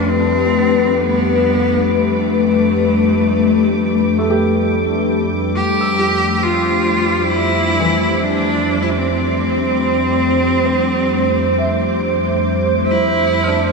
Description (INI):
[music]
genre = ambient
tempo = 66 BPM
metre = 4/4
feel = straight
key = F lydian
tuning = A4 = 439 Hz
[part]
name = clear cello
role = melody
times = 0.0-13.7 s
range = A3 to G4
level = -18 LUFS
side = left 1 dB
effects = shimmer reverb, tape echo
[part]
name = airy breathy pad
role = sustained chords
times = 0.0-13.7 s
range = F2 to C5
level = -17 LUFS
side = equal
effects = chorus, shimmer reverb
[part]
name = felt-muted upright piano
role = arpeggios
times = 0.0-13.7 s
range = D3 to F6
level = -25 LUFS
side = right 2 dB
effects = shimmer reverb, tape echo
[part]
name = organ-like drone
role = drone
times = 0.0-13.7 s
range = G3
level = -23 LUFS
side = left 4 dB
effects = ensemble chorus, built-in reverb
[part]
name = muted studio violin section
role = texture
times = 0.0-13.7 s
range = D6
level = -29 LUFS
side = left 1 dB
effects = shimmer reverb
[sound]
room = wet huge ambient reverb, RT60 8.1 s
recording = none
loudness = -13 LUFS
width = side -3 dB against mid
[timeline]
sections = 0.0-13.7 A section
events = none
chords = 0.0 Fadd9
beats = 0.09 1.01 | 1.93 2.84 3.75 4.66 | 5.56 6.46 7.37 8.27 | 9.18 10.09 11.01 11.94 | 12.86